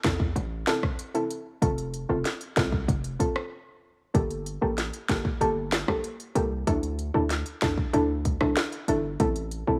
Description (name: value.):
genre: dancehall.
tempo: 95 BPM.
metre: 4/4.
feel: straight.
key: G dorian.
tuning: A4 = 441 Hz.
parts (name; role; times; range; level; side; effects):
soft round pluck; accompaniment; 0.0-9.8 s; Bb3 to A4; -30 LUFS; equal; chorus.
hard-hitting 808-style bass; bass; 0.0-9.8 s; F1 to E2; -32 LUFS; equal; none.
afro-pop drum kit; drums; 0.0-9.7 s; hi-hat, kick drum, rim click, snare drum; -30 LUFS; equal; none.
room: light reverb, digital ambience.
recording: none.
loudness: -27 LUFS.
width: mono.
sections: 0.0-4.1 A section; 4.1-9.8 B section.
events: break 3.5-4.1.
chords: 0.0 Am; 1.6 F; 4.1 Gmadd9; 6.7 Dsus2; 9.2 Am.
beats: 0.36 0.99 | 1.62 2.25 2.88 3.52 | 4.15 4.78 5.41 6.04 | 6.67 7.30 7.94 8.57 | 9.20.